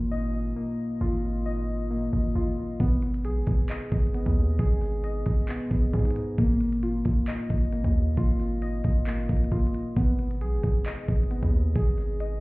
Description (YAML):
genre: hip hop, trap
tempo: 134 BPM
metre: 4/4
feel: half-time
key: G# dorian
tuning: A4 = 440 Hz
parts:
  - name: muted felt-like synth keys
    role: arpeggios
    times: 0.0-12.4 s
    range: A#3 to D#5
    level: -30 LUFS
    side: left 1 dB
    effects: chorus, low-pass filter, digital delay
  - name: hard-hitting 808-style bass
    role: bass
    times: 0.0-12.4 s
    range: G#1 to G#2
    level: -27 LUFS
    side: equal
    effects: none
  - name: trap drum kit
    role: drums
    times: 2.8-12.3 s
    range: handclaps, hi-hat, kick drum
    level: -25 LUFS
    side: equal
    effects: none
room: little or no reverb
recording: heard muffled through a wall, club reverb, EQ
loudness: -24 LUFS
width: side -22 dB against mid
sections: 0.0-12.4 A section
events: none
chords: 0.0 D#sus2/G#; 2.8 G#m; 6.4 D#sus2/G#; 10.0 G#m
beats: 0.11 0.56 | 1.01 1.46 1.91 2.35 | 2.80 3.25 3.70 4.14 | 4.59 5.04 5.49 5.93 | 6.38 6.83 7.28 7.73 | 8.17 8.62 9.07 9.52 | 9.96 10.41 10.86 11.31 | 11.76 12.20